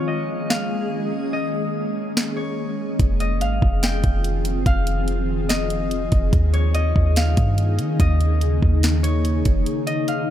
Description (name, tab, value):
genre	hip hop, atmospheric cloud-rap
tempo	144 BPM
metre	4/4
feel	half-time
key	F minor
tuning	A4 = 440 Hz
part	concert harp	melody	0.0-10.3 s	Db5 to G5	-28 LUFS	left 2 dB	low-pass filter, tape echo
part	ethereal airy pad	sustained chords	0.0-10.3 s	C3 to Ab4	-25 LUFS	left 1 dB	ensemble chorus, built-in reverb, sidechain pumping, low-pass filter
part	backwards swelling texture	texture	0.0-3.0, 9.7-10.3 s	Db4 to Eb5	-35 LUFS	left 1 dB	built-in reverb
part	smooth R&B drum kit	drums	0.5-10.2 s	hi-hat, kick drum, snare drum	-21 LUFS	equal	none
part	clean 808-style bass	bass	3.0-9.7 s	F1 to Eb3	-20 LUFS	equal	none
room	little or no reverb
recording	none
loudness	-18 LUFS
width	side -11 dB against mid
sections	0.0-3.0 A section; 3.0-10.3 B section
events	break 9.7-10.3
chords	0.0 Eb7sus4; 3.0 Fm7; 6.3 Eb7sus4; 9.7 Fm7